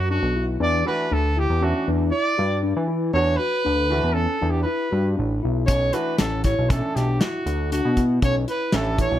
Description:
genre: progressive instrumental, band music in an uneven meter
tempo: 118 BPM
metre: 5/4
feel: straight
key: E dorian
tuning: A4 = 440 Hz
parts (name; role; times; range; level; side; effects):
- clear trumpet; melody; 0.0-9.2 s; F#4 to D5; -24 LUFS; right 1 dB; none
- mellow tine electric piano; arpeggios; 0.0-9.2 s; C#4 to F#4; -27 LUFS; left 4 dB; lush chorus
- fat analog bass; bass; 0.0-9.2 s; A1 to E3; -23 LUFS; equal; none
- bright baby grand piano; accompaniment; 0.9-9.2 s; E3 to A4; -29 LUFS; right 4 dB; none
- warm soul drum kit; drums; 5.7-9.1 s; hi-hat, kick drum, snare drum; -23 LUFS; equal; none
room: light reverb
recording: none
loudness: -19 LUFS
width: side -12 dB against mid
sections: 0.0-9.2 A section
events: none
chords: 0.0 Dadd9; 0.6 Em9; 5.7 Bm11

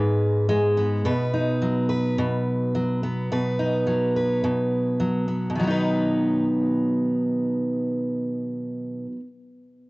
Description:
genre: pop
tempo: 107 BPM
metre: 4/4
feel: straight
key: B major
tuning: A4 = 439 Hz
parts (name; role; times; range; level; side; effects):
- picked steel-string acoustic guitar; accompaniment; 0.0-9.3 s; G#2 to B4; -21 LUFS; equal; none
room: light reverb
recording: worn, warbling old tape, cassette tape, warbly pitch drift, nothing above 7.9 kHz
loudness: -21 LUFS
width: side -23 dB against mid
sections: 0.0-5.6 A section; 5.6-7.8 B section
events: none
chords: 0.0 G#m; 1.1 B

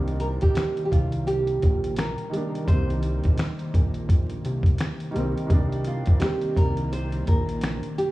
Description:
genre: lo-fi hip hop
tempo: 85 BPM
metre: 4/4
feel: swing 59% on 16ths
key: C minor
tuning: A4 = 439 Hz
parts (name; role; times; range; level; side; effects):
- warm upright piano; accompaniment; 0.0-8.1 s; Eb3 to D4; -32 LUFS; right 1 dB; none
- granular cloud pad; sustained chords; 0.7-8.1 s; C3 to D4; -36 LUFS; left 1 dB; built-in reverb
- fat analog bass; bass; 0.0-7.8 s; Bb1 to C2; -26 LUFS; equal; none
- dusty soul sampler-style drum kit; drums; 0.1-8.1 s; finger snaps, hi-hat, kick drum, snare drum; -21 LUFS; equal; none
- nylon-string guitar; melody; 0.2-8.1 s; F4 to C5; -28 LUFS; right 2 dB; tape echo
room: little or no reverb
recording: vinyl crackle, small room ambience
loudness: -22 LUFS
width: side -18 dB against mid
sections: 0.0-5.5 A section; 5.5-8.1 B section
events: none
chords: 0.0 Cm7; 5.5 Cm9

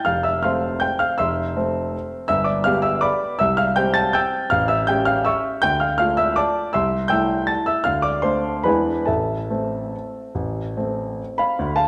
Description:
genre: classical, piano waltz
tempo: 139-170 BPM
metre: 3/4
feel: rubato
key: A minor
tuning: A4 = 439 Hz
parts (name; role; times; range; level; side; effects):
- clear grand piano; solo; 0.0-11.9 s; F1 to A6; -21 LUFS; equal; none
room: wet recital hall reverb, RT60 1.6 s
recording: none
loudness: -21 LUFS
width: mono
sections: 0.0-11.6 A section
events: none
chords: 0.1 Fmaj7; 2.3 G7; 3.4 C; 4.5 A7; 5.6 Dm; 6.8 Am/C; 7.9 Dm; 8.7 E7; 9.1 Am

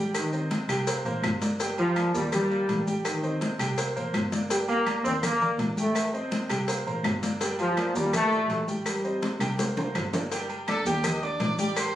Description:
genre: latin, salsa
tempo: 165 BPM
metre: 4/4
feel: straight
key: G minor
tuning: A4 = 441 Hz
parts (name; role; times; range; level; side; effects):
- clear grand piano; accompaniment; 0.0-11.9 s; Bb2 to D6; -32 LUFS; right 1 dB; none
- dark double bass; bass; 0.0-12.0 s; G1 to Eb2; -34 LUFS; equal; none
- agogo bells and timbales; percussion; 0.1-11.9 s; none; -37 LUFS; right 3 dB; none
- claves; percussion; 0.1-11.9 s; none; -36 LUFS; left 2 dB; none
- cowbell and bongos; percussion; 0.1-11.9 s; none; -35 LUFS; left 2 dB; none
- maracas; percussion; 0.1-11.9 s; none; -39 LUFS; left 1 dB; none
- clear trombone section; melody; 0.2-9.2 s; Eb3 to C4; -26 LUFS; equal; none
- congas; percussion; 0.2-11.9 s; none; -32 LUFS; left 1 dB; none
- bright trumpet section; melody; 10.7-11.9 s; G4 to Eb6; -30 LUFS; equal; none
room: moderate large studio reverb, RT60 0.8 s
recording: recorded on a phone in the room, studio reverb, compression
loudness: -24 LUFS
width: side -12 dB against mid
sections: 0.0-10.3 A section; 10.3-12.0 B section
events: drum fill 9.2-10.3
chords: 0.1 Am7b5; 0.9 C5; 1.6 Gm; 2.3 Ebmaj7; 3.1 Am7b5; 3.8 C5; 4.5 Gm; 5.2 Ebmaj7; 6.0 Am7b5; 6.7 C5; 7.4 Gm; 8.1 Ebmaj7; 8.9 Am7b5; 9.6 C5; 10.3 Gsus2; 11.0 Ebmaj7

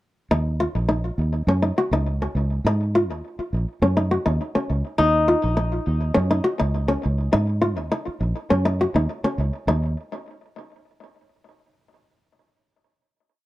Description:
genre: afrobeat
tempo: 102 BPM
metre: 4/4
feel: straight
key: Eb minor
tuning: A4 = 440 Hz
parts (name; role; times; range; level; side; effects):
- kora; arpeggios; 0.3-9.9 s; Db4 to Gb4; -22 LUFS; left 1 dB; tape echo
- fingered electric bass; bass; 0.3-9.9 s; Bb1 to Ab2; -22 LUFS; right 1 dB; none
room: light reverb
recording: dry, close 1970s-style studio recording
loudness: -20 LUFS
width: side -16 dB against mid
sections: 0.3-9.7 groove; 9.7-12.0 final note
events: none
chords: 0.3 Ebm7; 9.7 N.C.

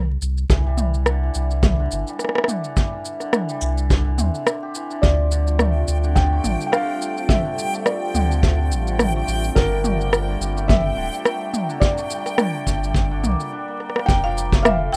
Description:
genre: folktronica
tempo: 106 BPM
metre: 4/4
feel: swing 56% on 16ths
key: unclear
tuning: A4 = 440 Hz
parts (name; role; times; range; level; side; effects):
- warm sub bass; bass; 0.0-15.0 s; D1 to E2; -23 LUFS; equal; none
- organic electronic drum kit; drums; 0.2-15.0 s; rim click, shaker, toms; -25 LUFS; equal; overdrive
- hammered dulcimer; arpeggios; 0.5-15.0 s; D3 to G4; -31 LUFS; equal; none
- kick drum; drums; 0.5-14.6 s; none; -21 LUFS; equal; none
- felt-muted upright piano; melody; 5.0-15.0 s; Bb4 to G5; -28 LUFS; equal; digital delay
- warm analog pad; sustained chords; 5.0-15.0 s; G3 to Bb5; -36 LUFS; equal; chorus
- backwards swelling texture; texture; 5.8-13.5 s; G5; -33 LUFS; equal; built-in reverb
- buzzing marimba with medium hard mallets; second line; 14.2-15.0 s; E5 to G5; -26 LUFS; equal; none
room: little or no reverb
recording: rough home demo mix, vinyl crackle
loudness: -21 LUFS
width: mono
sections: 0.0-14.1 A section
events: break 13.5-14.1; drum fill 13.8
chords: 0.0 N.C.; 0.5 Cadd9; 5.0 Dm; 9.6 Gmadd9; 14.1 Fadd9

